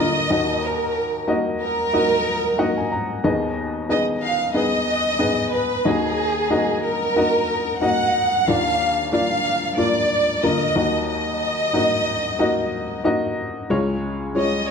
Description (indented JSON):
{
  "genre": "pop",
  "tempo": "92 BPM",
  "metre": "4/4",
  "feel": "swing 56% on 16ths",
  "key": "Eb harmonic minor",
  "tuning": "A4 = 440 Hz",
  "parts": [
    { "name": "warm studio violin section", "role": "melody", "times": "0.0-14.7 s", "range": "Ab4 to Gb5", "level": "-21 LUFS", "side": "right 1 dB", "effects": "none" },
    { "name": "clear upright piano", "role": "accompaniment", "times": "0.0-14.7 s", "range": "Db2 to Bb5", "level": "-21 LUFS", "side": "left 2 dB", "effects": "none" }
  ],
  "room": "wet large studio reverb, RT60 1.1 s",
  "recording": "dark, warm production",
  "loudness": "-18 LUFS",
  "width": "side -6 dB against mid",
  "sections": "0.0-13.7 A section; 13.7-14.7 B section",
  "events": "upright piano fill 2.3-3.2",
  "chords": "0.3 Ebm; 3.2 Abm/Eb; 5.9 Ebm; 8.5 Bb/Eb; 10.8 Ebm; 13.7 Db",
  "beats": "| 0.63 1.28 1.93 2.59 | 3.24 3.89 4.55 5.20 | 5.85 6.51 7.16 7.82 | 8.47 9.12 9.78 10.43 | 11.09 11.74 12.39 13.05 | 13.70 14.36"
}